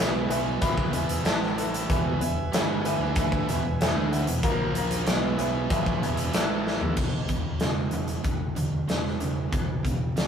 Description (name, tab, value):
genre	classic rock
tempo	94 BPM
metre	4/4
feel	straight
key	E major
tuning	A4 = 444 Hz
part	dark concert grand piano	accompaniment	0.0-6.9 s	A4 to B5	-31 LUFS	left 1 dB	none
part	overdriven tonewheel organ	sustained chords	0.0-7.0 s	E4 to B5	-41 LUFS	equal	none
part	biting overdriven guitar	riff	0.0-10.3 s	E2 to D4	-35 LUFS	left 4 dB	none
part	sludgy distorted guitar	riff	0.0-10.3 s	E2 to D4	-31 LUFS	right 4 dB	overdrive
part	growling fingered electric bass	bass	0.0-10.3 s	E1 to D2	-33 LUFS	left 1 dB	overdrive
part	big rock drum kit	drums	0.0-10.3 s	crash cymbal, hi-hat, kick drum, snare drum, toms	-26 LUFS	equal	none
room	moderate stone room reverb, RT60 1.4 s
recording	rough rehearsal-room recording, warm saturation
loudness	-24 LUFS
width	side -8 dB against mid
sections	0.0-7.0 A section; 7.0-10.3 B section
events	grand piano fill 0.9-1.9; drum fill 6.7-7.0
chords	0.0 E; 1.2 A5; 1.9 E; 4.4 A#5; 5.1 E; 6.3 A5; 7.0 E5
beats	0.61 1.25 | 1.89 2.52 3.16 3.79 | 4.43 5.06 5.70 6.34 | 6.97 7.61 8.25 8.89 | 9.53 10.16